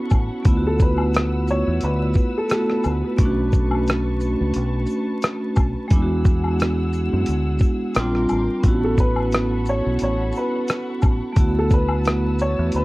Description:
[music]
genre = lo-fi hip hop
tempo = 88 BPM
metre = 4/4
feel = swing 55% on 16ths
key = A major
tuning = A4 = 440 Hz
[part]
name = vibraphone with medium hard mallets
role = accompaniment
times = 0.0-12.8 s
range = G3 to F#4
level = -23 LUFS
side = right 1 dB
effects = cassette tape, low-pass filter
[part]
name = warm studio string section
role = sustained chords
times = 0.0-12.8 s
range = G#4 to E6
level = -35 LUFS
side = left 2 dB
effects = low-pass filter
[part]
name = deep dub fingered electric bass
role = bass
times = 0.1-12.8 s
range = A1 to F#2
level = -23 LUFS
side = equal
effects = none
[part]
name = dusty soul sampler-style drum kit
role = drums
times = 0.1-12.8 s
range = hi-hat, kick drum, rim click, shaker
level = -18 LUFS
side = equal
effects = none
[part]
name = tube shaker and woodblock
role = percussion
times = 0.1-12.8 s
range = none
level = -32 LUFS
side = left 4 dB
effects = none
[part]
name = clear upright piano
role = melody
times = 0.7-2.8, 8.8-12.8 s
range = A4 to C#5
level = -26 LUFS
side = left 1 dB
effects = low-pass filter, analog delay
[sound]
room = light reverb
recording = worn, warbling old tape, cassette tape, vinyl crackle, warbly pitch drift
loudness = -18 LUFS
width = side -20 dB against mid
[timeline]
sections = 0.0-12.8 A section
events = none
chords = 0.5 D69; 3.2 Bm9; 5.9 E9; 8.0 Bb69; 8.6 A69; 11.4 D69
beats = | 0.45 1.14 1.82 2.50 | 3.18 3.86 4.54 5.23 | 5.91 6.59 7.27 7.95 | 8.64 9.32 10.00 10.68 | 11.36 12.04 12.73

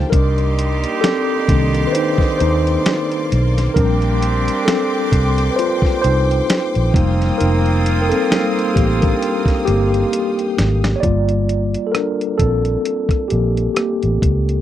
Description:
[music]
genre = R&B, neo-soul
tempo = 66 BPM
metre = 4/4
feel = swing 57% on 16ths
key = unclear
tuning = A4 = 440 Hz
[part]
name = mellow tine electric piano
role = accompaniment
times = 0.0-14.6 s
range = Eb3 to D5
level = -18 LUFS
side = left 1 dB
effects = medium stereo tremolo
[part]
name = clear studio string section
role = sustained chords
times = 0.0-11.0 s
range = Bb3 to Eb6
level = -27 LUFS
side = left 2 dB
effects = none
[part]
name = vintage muted fingered electric bass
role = bass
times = 0.0-14.6 s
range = F1 to Eb2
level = -17 LUFS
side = equal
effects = none
[part]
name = warm horn section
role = stabs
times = 0.1-10.5 s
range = G3 to G4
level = -24 LUFS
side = right 5 dB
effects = none
[part]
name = dusty soul sampler-style drum kit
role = drums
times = 0.1-14.6 s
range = hi-hat, kick drum, rim click, snare drum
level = -18 LUFS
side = equal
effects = none
[sound]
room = little or no reverb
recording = dry, close 1970s-style studio recording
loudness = -14 LUFS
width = side -12 dB against mid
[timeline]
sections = 0.0-11.0 A section; 11.0-14.6 B section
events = tine electric piano solo 0.0-11.0, 11.0-14.6; drum fill 10.1-11.0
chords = 0.1 Cm9; 3.8 Bb69; 6.9 F9sus4; 11.0 Gm9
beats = | 0.12 1.03 1.94 2.85 | 3.75 4.66 5.57 6.48 | 7.39 8.30 9.21 10.12 | 11.03 11.94 12.85 13.76

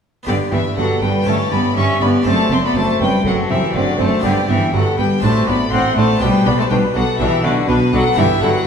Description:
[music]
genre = classical, baroque-style concerto movement with solo episodes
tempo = 122 BPM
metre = 4/4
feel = straight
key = G major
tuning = A4 = 440 Hz
[part]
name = harpsichord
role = accompaniment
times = 0.2-8.7 s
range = F#2 to A4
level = -23 LUFS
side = equal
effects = none
[part]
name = rich cello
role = melody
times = 0.3-8.7 s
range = B2 to C#4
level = -18 LUFS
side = left 2 dB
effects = none
[part]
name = rich chamber violin section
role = melody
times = 0.3-8.7 s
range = B4 to C#6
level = -22 LUFS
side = left 4 dB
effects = none
[part]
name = warm chamber violin section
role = second line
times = 0.3-8.5 s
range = D4 to F#5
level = -22 LUFS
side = left 1 dB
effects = none
[part]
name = dark chamber viola section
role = accompaniment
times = 0.3-8.5 s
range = B3 to E4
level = -25 LUFS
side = right 2 dB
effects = none
[part]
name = rich chamber cello section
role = bass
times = 0.3-8.5 s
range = F#2 to B2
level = -22 LUFS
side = right 4 dB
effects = none
[part]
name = rich chamber double bass section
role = bass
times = 0.3-8.5 s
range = F#1 to B1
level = -23 LUFS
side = right 3 dB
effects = none
[sound]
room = wet recital hall reverb, RT60 1.6 s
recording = heard from further back in the room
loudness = -13 LUFS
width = side -7 dB against mid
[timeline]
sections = 0.3-8.7 A section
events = none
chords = 0.3 G; 1.3 A7/G; 2.3 D7/F#; 4.2 G; 5.2 D7/A; 6.2 G/B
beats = | 0.28 0.78 1.28 1.77 | 2.27 2.76 3.25 3.75 | 4.24 4.74 5.23 5.72 | 6.22 6.71 7.20 7.69 | 8.18

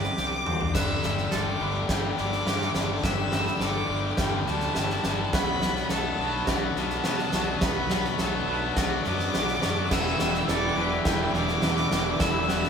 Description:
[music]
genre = post-rock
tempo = 105 BPM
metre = 4/4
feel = straight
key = unclear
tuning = A4 = 440 Hz
[part]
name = warm violin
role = melody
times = 0.0-12.7 s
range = D5 to E6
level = -31 LUFS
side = equal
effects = none
[part]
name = soft additive organ-like pad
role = sustained chords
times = 0.2-12.7 s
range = C3 to D5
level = -40 LUFS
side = right 2 dB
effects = none
[part]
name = twangy electric guitar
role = arpeggios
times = 0.0-12.7 s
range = B2 to B4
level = -36 LUFS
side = equal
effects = none
[part]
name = twangy electric guitar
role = arpeggios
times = 0.0-12.7 s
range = A4 to C5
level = -37 LUFS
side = right 4 dB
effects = phaser
[part]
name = fuzz fingered electric bass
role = bass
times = 0.0-12.6 s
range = E1 to B2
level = -32 LUFS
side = equal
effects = overdrive
[part]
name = huge arena drum kit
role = drums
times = 0.0-12.7 s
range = crash cymbal, kick drum, snare drum, toms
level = -28 LUFS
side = right 1 dB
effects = none
[part]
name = tight distorted guitar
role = riff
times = 0.7-12.7 s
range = E2 to B3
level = -30 LUFS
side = left 6 dB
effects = distortion
[part]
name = overdriven semi-hollow guitar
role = riff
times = 9.9-12.7 s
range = E2 to E3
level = -32 LUFS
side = right 7 dB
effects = none
[sound]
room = wet studio reverb, RT60 0.7 s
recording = band playing live in one room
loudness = -23 LUFS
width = side -6 dB against mid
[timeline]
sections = 0.7-12.7 A section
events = drum fill 0.2-0.7; build-up 0.7-12.7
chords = 0.0 Csus2; 0.7 Gadd9; 5.3 Bm7; 9.9 Em7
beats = 0.17 | 0.74 1.31 1.89 2.46 | 3.04 3.61 4.18 4.76 | 5.33 5.90 6.48 7.05 | 7.62 8.20 8.77 9.34 | 9.91 10.49 11.06 11.63 | 12.20

